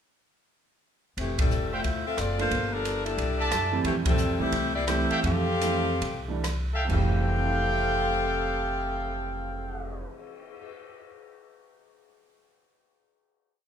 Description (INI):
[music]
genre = jazz, big band swing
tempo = 126-180 BPM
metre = 4/4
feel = swing 63% on 8ths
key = F major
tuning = A4 = 440 Hz
[part]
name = bright saxophone section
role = melody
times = 1.2-10.0 s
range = E3 to F5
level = -29 LUFS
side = left 3 dB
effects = none
[part]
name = upright bass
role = bass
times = 1.2-10.0 s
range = F1 to C3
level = -30 LUFS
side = equal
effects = none
[part]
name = open jazz drum kit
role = drums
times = 1.2-10.6 s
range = crash cymbal, cymbal swell, hi-hat, kick drum, ride cymbal, rim click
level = -32 LUFS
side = equal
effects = none
[part]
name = clear trumpet section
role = stabs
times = 1.7-10.1 s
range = A4 to A5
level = -30 LUFS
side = right 1 dB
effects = none
[part]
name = clear baby grand piano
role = accompaniment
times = 2.4-11.1 s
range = F2 to C6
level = -33 LUFS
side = right 6 dB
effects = none
[sound]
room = moderate large studio reverb, RT60 0.8 s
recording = minimal, uncompressed stereo recording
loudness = -24 LUFS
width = side -8 dB against mid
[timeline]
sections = 1.2-6.9 A section; 6.9-10.7 final chord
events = band accent 1.3, 4.0; slowing down 3.9-6.9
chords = 1.2 Fmaj9; 1.8 Dm9; 2.5 Gm9; 3.2 C69; 3.9 Fmaj9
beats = | 1.17 1.51 1.84 2.18 | 2.51 2.85 3.18 3.52 | 3.85 4.19 4.53 4.88 | 5.24 5.62 6.02 6.45 | 6.90 7.38 7.85 8.33 | 8.80 9.28 9.76 10.23